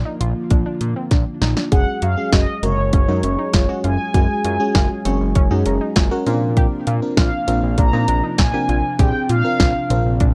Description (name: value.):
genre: synth-pop.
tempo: 99 BPM.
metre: 4/4.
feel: straight.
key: unclear.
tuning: A4 = 438 Hz.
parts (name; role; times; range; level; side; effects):
mellow synth brass; melody; 0.0-10.3 s; Db5 to Bb5; -25 LUFS; equal; chorus, digital delay.
chorused pulse-width pad; sustained chords; 0.0-10.3 s; C3 to Ab4; -30 LUFS; equal; none.
fat analog bass; bass; 0.0-10.3 s; Gb1 to Bb2; -22 LUFS; equal; none.
warbly dusty pluck; arpeggios; 0.1-10.3 s; C3 to Ab4; -31 LUFS; equal; chorus, digital delay.
house drum kit; drums; 0.2-10.3 s; hi-hat, kick drum, snare drum; -19 LUFS; equal; none.
FM electric piano with soft pad layer; accompaniment; 1.7-10.2 s; Db3 to Db6; -26 LUFS; equal; chorus.
room: light reverb.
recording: dark, warm production.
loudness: -18 LUFS.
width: mono.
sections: 0.0-1.7 A section; 1.7-10.3 B section.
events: drum fill 1.1-1.7; FM electric piano fill 4.8-6.6.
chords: 0.0 Bb; 1.7 Gbsus2; 6.3 Bbadd9.